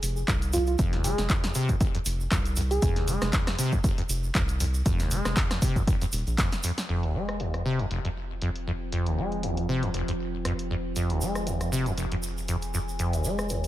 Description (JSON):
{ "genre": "acid house", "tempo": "118 BPM", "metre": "4/4", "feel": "swing 55% on 16ths", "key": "F minor", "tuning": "A4 = 437 Hz", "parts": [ { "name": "round analog bass", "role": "bass", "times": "0.0-13.7 s", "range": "Eb1 to C2", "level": "-31 LUFS", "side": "equal", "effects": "sidechain pumping" }, { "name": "punchy analog drum machine", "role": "drums", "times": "0.0-13.7 s", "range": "handclaps, hi-hat, rim click, snare drum", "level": "-33 LUFS", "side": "equal", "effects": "low-pass filter on hats, low-pass filter on snare, low-pass filter on room" }, { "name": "tube shaker", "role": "percussion", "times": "0.0-6.9, 11.0-13.7 s", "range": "none", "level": "-38 LUFS", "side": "right 3 dB", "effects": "none" }, { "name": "acid bass, saw", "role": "riff", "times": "0.3-13.7 s", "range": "F1 to Ab3", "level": "-29 LUFS", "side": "equal", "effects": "lush chorus, sidechain pumping, ping-pong delay" }, { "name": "electronic kick drum", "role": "drums", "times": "0.3-6.5 s", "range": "none", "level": "-26 LUFS", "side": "equal", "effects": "none" }, { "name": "soft struck synth lead", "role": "melody", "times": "0.5-3.1 s", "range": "F4 to Ab4", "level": "-32 LUFS", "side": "right 2 dB", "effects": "chorus, ping-pong delay" }, { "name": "deep dark ambient pad", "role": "texture", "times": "8.1-13.7 s", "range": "F4 to Ab5", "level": "-35 LUFS", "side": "right 1 dB", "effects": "chorus, built-in reverb, sidechain pumping" } ], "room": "little or no reverb", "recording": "none", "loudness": "-25 LUFS", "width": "side -14 dB against mid", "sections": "0.0-6.9 A section; 6.9-13.7 B section", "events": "drop 0.0-6.9; drum fill 6.4-6.9", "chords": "0.0 F7(no3); 6.9 Fm7" }